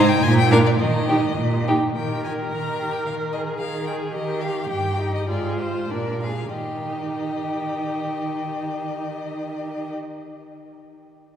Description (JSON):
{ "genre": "quick classical-period movement for string quartet", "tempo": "89-111 BPM", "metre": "2/4", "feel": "rubato", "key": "Eb major", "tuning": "A4 = 440 Hz", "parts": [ { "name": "rich violin", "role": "melody", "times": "0.0-9.9 s", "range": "C5 to Bb5", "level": "-29 LUFS", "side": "left 6 dB", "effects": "none" }, { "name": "rich violin", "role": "second line", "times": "0.0-9.9 s", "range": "Eb4 to Bb4", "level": "-28 LUFS", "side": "left 3 dB", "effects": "none" }, { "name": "warm viola", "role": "accompaniment", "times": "0.0-9.9 s", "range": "D4 to Bb4", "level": "-26 LUFS", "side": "right 2 dB", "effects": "none" }, { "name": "warm cello", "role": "bass", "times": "0.0-9.9 s", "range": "G2 to Eb3", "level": "-24 LUFS", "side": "right 2 dB", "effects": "none" } ], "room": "wet church reverb, RT60 3.9 s", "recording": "recorded in a church or concert hall", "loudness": "-21 LUFS", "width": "side -9 dB against mid", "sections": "0.0-2.0 A section; 2.0-6.6 B section; 6.6-9.2 C section", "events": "slowing down 3.6-6.6", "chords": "0.2 Bb; 0.8 Eb; 3.1 Ebsus4; 4.2 Eb; 4.7 Eb/G; 5.3 Fm/Ab; 5.9 Bb7; 6.6 Eb" }